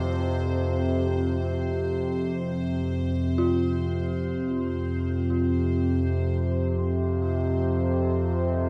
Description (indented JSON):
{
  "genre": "dark ambient drone",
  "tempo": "free time",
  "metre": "none",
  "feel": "none",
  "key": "unclear",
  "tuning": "A4 = 439 Hz",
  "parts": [
    { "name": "analog drone", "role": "drone", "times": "0.0-8.7 s", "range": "F2 to C3", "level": "-26 LUFS", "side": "equal", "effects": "chorus" },
    { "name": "bubbling stepped-filter texture", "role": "texture", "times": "0.0-8.7 s", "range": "C5", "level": "-46 LUFS", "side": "equal", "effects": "chorus, built-in reverb, shimmer reverb" },
    { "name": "dark detuned synth bell", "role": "arpeggios", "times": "3.4-8.7 s", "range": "F4", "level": "-36 LUFS", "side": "equal", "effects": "chorus, phaser, delay, shimmer reverb" }
  ],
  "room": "moderate huge ambient reverb, RT60 8.3 s",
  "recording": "none",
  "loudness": "-26 LUFS",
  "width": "mono",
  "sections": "0.0-8.7 A section",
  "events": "fade-out on synth texture 0.0-8.7",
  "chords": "0.0 F5",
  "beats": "free time"
}